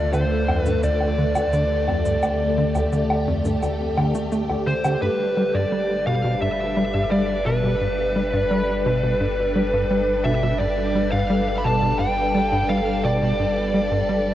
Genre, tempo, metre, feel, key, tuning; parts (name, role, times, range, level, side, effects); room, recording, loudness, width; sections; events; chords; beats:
ambient, sequencer-driven space music; 86 BPM; 4/4; straight; A4 = 441 Hz
fuzz lead guitar; melody; 0.0-14.3 s; B4 to B5; -24 LUFS; equal; distortion, shimmer reverb, tape echo
phased string machine; sustained chords; 0.0-14.3 s; D3 to B4; -25 LUFS; equal; ensemble chorus, phaser, shimmer reverb
tight sequencer bass; riff; 0.0-14.2 s; D2 to A3; -24 LUFS; equal; analog chorus, tape echo
warm sub bass; bass; 0.0-14.3 s; G1 to D2; -28 LUFS; equal
shaker and woodblock; percussion; 0.1-5.0 s; -29 LUFS; equal; overdrive, tape echo
wet huge ambient reverb, RT60 8.8 s; worn, warbling old tape, cassette tape, warbly pitch drift, nothing above 10.6 kHz; -19 LUFS; side -12 dB against mid
0.0-5.0 A section; 5.0-14.3 B section
0.0 Dm; 5.0 G
0.14 0.83 1.53 | 2.23 2.93 3.62 4.32 | 5.02 5.72 6.42 7.11 | 7.81 8.51 9.21 9.90 | 10.60 11.30 12.00 12.69 | 13.39 14.09